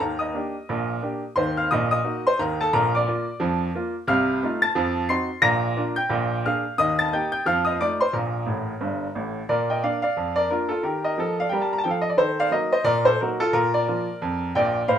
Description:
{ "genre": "jazz, stride piano", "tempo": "178 BPM", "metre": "4/4", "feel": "swing 60% on 8ths", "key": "Bb major", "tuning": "A4 = 440 Hz", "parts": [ { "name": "bright baby grand piano", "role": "solo", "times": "0.0-15.0 s", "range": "G1 to C7", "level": "-21 LUFS", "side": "equal", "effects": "none" } ], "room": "wet studio reverb, RT60 0.6 s", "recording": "rough home demo mix", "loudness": "-21 LUFS", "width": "side -9 dB against mid", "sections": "0.0-9.5 A section; 9.5-15.0 A section", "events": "grand piano fill 8.5-9.5", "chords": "0.0 Ebmaj7; 1.4 Ebm; 2.7 Bb; 4.1 F7/C; 4.8 F7b9; 5.4 Bb; 6.1 Bb7; 6.8 Eb; 7.5 F7; 8.1 Gmadd9; 9.5 Bb; 10.8 Ebmaj7; 12.2 Ebm; 13.5 Bb" }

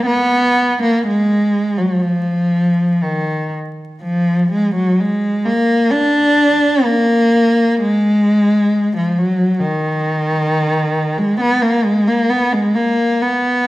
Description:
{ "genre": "classical, free, expressive piece for unaccompanied cello", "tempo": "58-72 BPM", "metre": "4/4", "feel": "rubato", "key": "Eb minor", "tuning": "A4 = 440 Hz", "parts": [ { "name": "warm cello", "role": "solo", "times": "0.0-13.7 s", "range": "Eb3 to D4", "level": "-13 LUFS", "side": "equal", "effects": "none" } ], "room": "wet recital hall reverb, RT60 1.5 s", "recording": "vinyl crackle", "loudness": "-13 LUFS", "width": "side -17 dB against mid", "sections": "0.0-13.7 A section", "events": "none", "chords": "none" }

